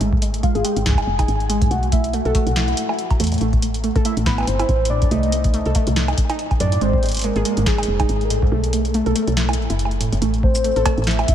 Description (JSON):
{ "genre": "IDM", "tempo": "141 BPM", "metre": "4/4", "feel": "swing 56% on 16ths", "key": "unclear", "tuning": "A4 = 440 Hz", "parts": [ { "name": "warbly dusty pluck", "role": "arpeggios", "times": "0.0-11.3 s", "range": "G#2 to A4", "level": "-23 LUFS", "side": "right 2 dB", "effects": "chorus, phaser, cassette tape, ping-pong delay" }, { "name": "woody FM bass", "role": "bass", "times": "0.0-11.3 s", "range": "F1 to A2", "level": "-22 LUFS", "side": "equal", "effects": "none" }, { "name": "electro analog drum machine", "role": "drums", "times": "0.0-11.3 s", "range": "bongos, cowbell, hi-hat, shaker, snare drum", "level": "-26 LUFS", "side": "right 1 dB", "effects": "ping-pong delay" }, { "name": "electronic kick drum", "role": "drums", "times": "0.1-11.3 s", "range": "none", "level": "-19 LUFS", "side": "equal", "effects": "none" }, { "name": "warm velvety synth lead", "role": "melody", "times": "0.4-11.3 s", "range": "G#4 to G#5", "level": "-25 LUFS", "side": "left 1 dB", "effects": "chorus, tremolo, analog delay" } ], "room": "moderate cathedral reverb, RT60 5.2 s", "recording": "dreamy mix soaked in reverb", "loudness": "-16 LUFS", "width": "side -10 dB against mid", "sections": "0.0-10.2 A section; 10.2-11.3 B section", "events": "kick drops out 8.5-10.2", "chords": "0.0 G#5; 1.7 B5; 3.4 Am; 5.1 Cm; 6.8 G#5; 8.5 B5; 10.2 Am", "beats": "| 0.01 0.43 0.86 1.28 | 1.71 2.13 2.56 2.99 | 3.41 3.84 4.26 4.69 | 5.11 5.54 5.96 6.39 | 6.82 7.24 7.67 8.09 | 8.52 8.94 9.37 9.79 | 10.22 10.64 11.07" }